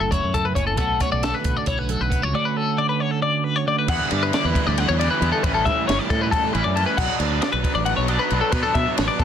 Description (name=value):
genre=math rock and midwest emo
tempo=271 BPM (eighths)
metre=7/8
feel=straight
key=unclear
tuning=A4 = 440 Hz
part: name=twelve-string electric guitar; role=accompaniment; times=0.0-5.4 s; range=D2 to F#4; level=-26 LUFS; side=right 8 dB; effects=none
part: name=twelve-string electric guitar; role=arpeggios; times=0.0-9.2 s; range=A4 to F#5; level=-22 LUFS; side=left 6 dB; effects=harmonic tremolo
part: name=modern bright fingered electric bass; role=bass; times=0.0-9.2 s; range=F#1 to B2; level=-25 LUFS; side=equal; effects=none
part: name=compact cocktail drum kit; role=drums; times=0.1-9.2 s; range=crash cymbal, hi-hat, kick drum, ride cymbal, snare drum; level=-25 LUFS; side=equal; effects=none
part: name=raw garage guitar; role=riff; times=3.9-9.2 s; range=A2 to E4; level=-25 LUFS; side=right 4 dB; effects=overdrive
room=light reverb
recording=dense, heavily limited modern master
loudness=-19 LUFS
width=side -8 dB against mid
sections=0.0-3.9 A section; 3.9-9.2 B section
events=none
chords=0.0 F#m7; 0.8 Bm9; 2.3 Dmaj7; 3.9 Em9; 5.4 A7sus4; 7.0 Bm7